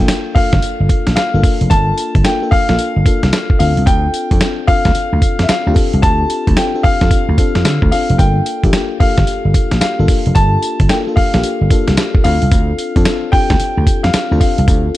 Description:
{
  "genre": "R&B, new jack swing",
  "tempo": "111 BPM",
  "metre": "4/4",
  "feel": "swing 64% on 16ths",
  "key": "G minor",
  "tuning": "A4 = 440 Hz",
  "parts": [
    { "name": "dark grand piano", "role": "melody", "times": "0.0-15.0 s", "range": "E5 to A5", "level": "-19 LUFS", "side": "left 1 dB", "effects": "none" },
    { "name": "FM electric piano", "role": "accompaniment", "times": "0.0-15.0 s", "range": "Bb3 to A4", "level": "-20 LUFS", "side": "left 4 dB", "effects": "chorus" },
    { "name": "vintage slap bass", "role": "bass", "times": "0.0-14.9 s", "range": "F1 to D3", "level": "-14 LUFS", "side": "equal", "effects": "none" },
    { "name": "dusty soul sampler-style drum kit", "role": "drums", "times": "0.1-15.0 s", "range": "hi-hat, kick drum, snare drum, tambourine", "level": "-14 LUFS", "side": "equal", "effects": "none" }
  ],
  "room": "digital ambience",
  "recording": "dark, warm production",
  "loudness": "-11 LUFS",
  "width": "side -16 dB against mid",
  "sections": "0.0-15.0 A section",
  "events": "none",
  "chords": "0.0 Gm7; 3.6 Dm7; 8.2 Gm7; 12.2 Dm7"
}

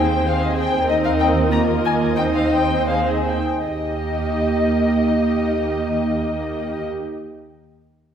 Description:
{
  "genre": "quick classical-period movement for string orchestra",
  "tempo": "77-98 BPM",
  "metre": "2/4",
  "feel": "rubato",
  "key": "Eb major",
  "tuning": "A4 = 441 Hz",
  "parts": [
    { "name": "muted studio violin section", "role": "melody", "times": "0.0-6.8 s", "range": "Eb5 to Bb5", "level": "-24 LUFS", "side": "left 4 dB", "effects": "none" },
    { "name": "muted studio violin section", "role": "second line", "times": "0.0-6.9 s", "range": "G4 to Eb5", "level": "-24 LUFS", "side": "equal", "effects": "none" },
    { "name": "muted symphonic viola section", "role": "accompaniment", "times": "0.0-6.8 s", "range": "Bb3 to F4", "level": "-22 LUFS", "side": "right 2 dB", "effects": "none" },
    { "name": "muted studio cello section", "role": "bass", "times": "0.0-6.9 s", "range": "Eb2", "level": "-31 LUFS", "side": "right 2 dB", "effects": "none" },
    { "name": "muted studio double bass section", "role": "bass", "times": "0.0-6.9 s", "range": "Eb2", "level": "-26 LUFS", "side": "right 3 dB", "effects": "none" }
  ],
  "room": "wet recital hall reverb, RT60 1.5 s",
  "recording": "recorded in a church or concert hall",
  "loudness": "-17 LUFS",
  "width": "side -8 dB against mid",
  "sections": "0.0-3.7 A section; 3.7-6.8 B section",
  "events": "slowing down 0.3-3.7",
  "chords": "0.0 Ab/Eb; 0.9 Eb5; 2.2 Ab/Eb; 3.7 Eb"
}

